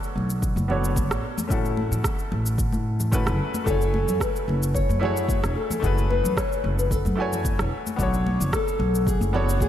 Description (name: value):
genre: sunset chillout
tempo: 111 BPM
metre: 4/4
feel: swing 53% on 16ths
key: F# minor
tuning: A4 = 440 Hz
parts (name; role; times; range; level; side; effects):
- bright grand piano; accompaniment; 0.0-9.7 s; A3 to G#5; -30 LUFS; moving between left 5 dB and right 3 dB; auto-pan, low-pass filter, tape echo
- electronic shaker and rim click; drums; 0.0-9.7 s; none; -33 LUFS; right 1 dB; none
- upright bass; bass; 0.2-9.7 s; E1 to A2; -25 LUFS; equal; none
- congas; percussion; 0.2-9.7 s; none; -34 LUFS; left 2 dB; none
- electronic kick drum; drums; 0.4-9.7 s; none; -27 LUFS; equal; none
- nylon-string guitar; melody; 3.7-9.7 s; F#4 to C#5; -27 LUFS; left 3 dB; tape echo
room: moderate lush hall reverb, RT60 2.7 s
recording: dreamy mix soaked in reverb, lossy compression artefacts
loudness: -21 LUFS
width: side -11 dB against mid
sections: 0.0-9.7 A section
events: none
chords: 0.0 Bm9; 1.2 A69; 3.7 F#m9; 8.0 Bm9